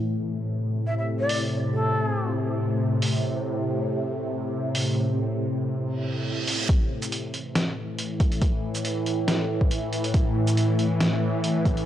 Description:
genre	deep dubstep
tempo	139 BPM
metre	4/4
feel	swing 54% on 16ths, half-time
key	A minor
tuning	A4 = 440 Hz
part	bowed-like drone	sustained chords	0.0-11.9 s	A2 to E3	-25 LUFS	equal	built-in reverb, phaser
part	breathy shakuhachi	melody	0.9-2.3 s	A4 to E5	-28 LUFS	equal	dub echo
part	trip hop sampler-style drum kit	drums	1.3-11.8 s	hi-hat, shaker, snare drum	-29 LUFS	equal	none
part	reverse cymbal	sound effects	6.0-6.7 s	none	-32 LUFS	right 4 dB	none
part	electronic kick drum	drums	6.7-11.7 s	none	-22 LUFS	equal	none
room	moderate echo chamber reverb, RT60 1.8 s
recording	dry, gritty hardware recording, cassette tape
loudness	-23 LUFS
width	side -11 dB against mid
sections	0.0-6.7 A section; 6.7-11.9 B section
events	filter sweep on synth drone 0.0-6.7; reverse cymbal 6.0-6.7; build-up 6.7-11.9; filter sweep 6.7-11.9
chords	0.0 A5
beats	0.22 0.65 1.08 | 1.51 1.94 2.37 2.81 | 3.24 3.67 4.10 4.53 | 4.96 5.40 5.83 6.26 | 6.69 7.12 7.55 7.99 | 8.42 8.85 9.28 9.71 | 10.14 10.58 11.01 11.44

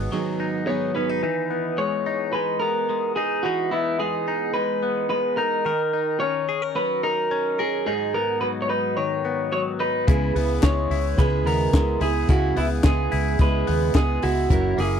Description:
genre	jangly indie pop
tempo	108 BPM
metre	4/4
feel	straight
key	unclear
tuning	A4 = 440 Hz
part	electric guitar at the edge of break-up	melody	0.0-15.0 s	E4 to C#5	-24 LUFS	right 1 dB	slapback echo
part	fingerpicked plugged-in steel-string acoustic guitar	accompaniment	0.0-1.7, 10.1-15.0 s	G#2 to A#4	-27 LUFS	right 6 dB	none
part	direct-recorded clean electric guitar	arpeggios	0.0-15.0 s	F#2 to A#4	-27 LUFS	left 5 dB	phaser
part	vintage muted fingered electric bass	bass	0.0-0.1, 10.1-15.0 s	F#1 to D#2	-24 LUFS	equal	none
part	compact cocktail drum kit	drums	10.1-14.9 s	hi-hat, kick drum, snare drum	-21 LUFS	equal	none
part	group handclap	percussion	10.6-14.1 s	none	-36 LUFS	left 9 dB	none
room	little or no reverb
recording	dry, close 1970s-style studio recording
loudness	-20 LUFS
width	side -8 dB against mid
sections	0.0-1.2 A section; 1.2-15.0 B section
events	none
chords	0.0 G#m7; 1.2 Emaj7; 5.7 D#m7; 7.9 G#m7; 10.1 C#m7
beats	0.12 0.67 | 1.23 1.78 2.33 2.89 | 3.44 3.99 4.55 5.10 | 5.66 6.21 6.76 7.32 | 7.87 8.42 8.97 9.53 | 10.08 10.63 11.19 11.74 | 12.29 12.84 13.40 13.95 | 14.50

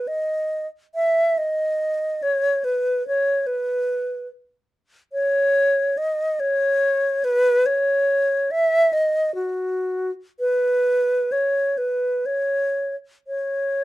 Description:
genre	classical, free, expressive piece for unaccompanied alto flute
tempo	56-75 BPM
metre	3/4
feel	rubato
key	unclear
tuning	A4 = 441 Hz
part	bright alto flute	solo	0.0-13.8 s	F#4 to E5	-19 LUFS	equal	none
room	light reverb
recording	dark, warm production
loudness	-19 LUFS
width	side -16 dB against mid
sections	0.0-13.8 A section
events	none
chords	none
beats	| 0.07 0.93 1.79 | 2.65 3.47 4.28 | 5.11 5.97 6.82 | 7.67 8.51 9.37 | 10.38 11.31 12.24 | 13.27

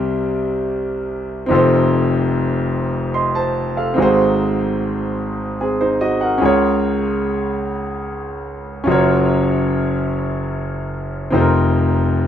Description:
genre	gospel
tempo	49 BPM (dotted quarters)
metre	6/8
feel	straight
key	unclear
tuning	A4 = 438 Hz
part	warm concert grand piano	solo	0.0-12.3 s	F1 to C6	-16 LUFS	equal	none
room	moderate studio ambience, RT60 0.4 s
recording	band playing live in one room, nothing above 10.5 kHz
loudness	-16 LUFS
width	side -9 dB against mid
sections	0.0-12.3 A section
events	none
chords	0.0 C7; 1.5 F7; 4.0 Ab7; 6.4 Db6; 8.9 Gbmaj7; 11.3 F7sus4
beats	0.28 | 1.51 2.73 | 3.96 5.19 | 6.41 7.64 | 8.87 10.09 | 11.32

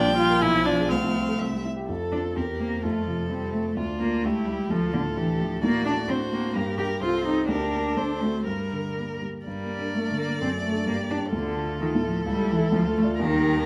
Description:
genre	quick classical-period movement for piano quartet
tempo	128 BPM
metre	2/4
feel	rubato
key	F major, G minor from 5.6 s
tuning	A4 = 440 Hz
part	rich violin	melody	0.0-13.7 s	F4 to G#5	-34 LUFS	equal	none
part	dark cello	second line	0.0-13.7 s	D3 to G4	-29 LUFS	equal	none
part	rich viola	accompaniment	0.0-13.7 s	C4 to Bb4	-33 LUFS	equal	none
part	warm concert grand piano	accompaniment	0.0-13.7 s	Bb1 to D5	-31 LUFS	equal	none
room	moderate recital hall reverb, RT60 1.6 s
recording	close, detailed microphones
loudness	-26 LUFS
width	mono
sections	0.0-1.9 A section; 1.9-9.5 B section; 9.5-13.7 C section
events	none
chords	0.4 Bdim7; 0.9 F/C; 1.4 C; 1.9 F; 2.4 C7/E; 2.8 F; 3.8 Dm; 4.2 A7/C#; 4.7 Dm; 5.6 D7/A; 6.6 Gm; 7.0 Cm; 7.5 Gm/D; 8.0 D7; 8.5 Gm; 10.4 D/F#; 10.9 Gm; 11.3 Dm; 12.3 A7/C#; 12.7 Dm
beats	0.42 | 0.91 1.40 | 1.89 2.37 | 2.84 3.31 | 3.77 4.24 | 4.71 5.17 | 5.63 6.09 | 6.55 7.02 | 7.49 7.97 | 8.46 8.96 | 9.46 9.94 | 10.41 10.87 | 11.33 11.80 | 12.27 12.73 | 13.20

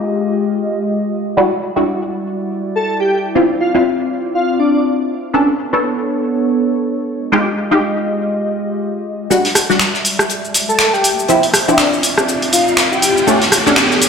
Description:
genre	deep house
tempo	121 BPM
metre	4/4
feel	swing 58% on 16ths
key	unclear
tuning	A4 = 440 Hz
part	warbly tape-like pad	sustained chords	0.0-14.1 s	G3 to E5	-19 LUFS	equal	chorus, built-in reverb
part	filtered dub chord stab	stabs	1.4-13.7 s	F3 to A4	-15 LUFS	equal	phaser, ensemble chorus, ping-pong delay
part	airy dreamy lead	melody	2.8-4.8, 10.7-13.3 s	D4 to A4	-17 LUFS	left 1 dB	chorus, dub echo
part	jazz brush drum kit	drums	9.3-14.1 s	hi-hat, snare drum	-20 LUFS	left 2 dB	high-pass filter on hats, high-pass filter on snare, high-pass filter on room
part	punchy analog drum machine	drums	9.3-14.1 s	finger snaps, hi-hat, rim click, shaker	-15 LUFS	equal	low-pass filter on cymbals, low-pass filter on perc, low-pass filter on hats, low-pass filter on snare
part	riser	sound effects	10.4-14.1 s	none	-21 LUFS	equal	none
room	wet echo chamber reverb, RT60 2.1 s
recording	played on a big sound system in a bare room, stone room reverb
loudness	-13 LUFS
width	side -6 dB against mid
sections	0.0-9.3 A section; 9.3-14.1 B section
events	filter sweep on synth stab 0.0-9.3; build-up 9.3-14.1; riser 10.4-14.1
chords	0.0 Fm9; 1.4 Em9; 3.4 Dm9; 5.3 Bm9; 7.1 Fm9; 9.3 Em9; 11.3 Dm9; 13.3 Bm9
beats	0.38 0.88 | 1.37 1.87 2.36 2.86 | 3.35 3.85 4.35 4.84 | 5.34 5.83 6.33 6.83 | 7.32 7.82 8.31 8.81 | 9.30 9.80 10.30 10.79 | 11.29 11.78 12.28 12.78 | 13.27 13.77

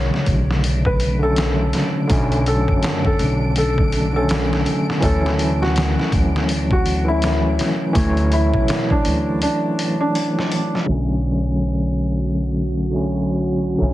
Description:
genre	trip hop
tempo	82 BPM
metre	4/4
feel	swing 60% on 16ths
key	B minor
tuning	A4 = 438 Hz
part	felt-muted upright piano	melody	0.0-10.8 s	D4 to C#5	-24 LUFS	equal	tape echo
part	overdriven tine electric piano	accompaniment	0.0-13.9 s	C#3 to C#5	-21 LUFS	equal	fast tremolo, vintage 12-bit sampler grit
part	upright bass	bass	0.0-13.9 s	B1 to B2	-21 LUFS	equal	none
part	flickering grainy texture	texture	0.3-10.9 s	D3 to D7	-33 LUFS	equal	built-in reverb
part	trip hop sampler-style drum kit	drums	0.1-10.9 s	hi-hat, kick drum, snare drum	-22 LUFS	equal	none
part	dark analog pad	sustained chords	11.8-13.9 s	F#4	-28 LUFS	right 2 dB	chorus
room	light reverb, digital ambience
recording	heavily compressed radio sound, low-pass filter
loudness	-16 LUFS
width	side -15 dB against mid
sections	0.0-10.9 A section; 10.9-13.9 B section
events	break 9.4-10.9; filter sweep 10.9-13.9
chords	0.0 Bm7; 5.0 Dmaj9; 10.9 Bm7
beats	0.64 1.37 | 2.10 2.83 3.56 4.29 | 5.03 5.76 6.49 7.22 | 7.95 8.68 9.42 10.15 | 10.88 11.61 12.34 13.07 | 13.81

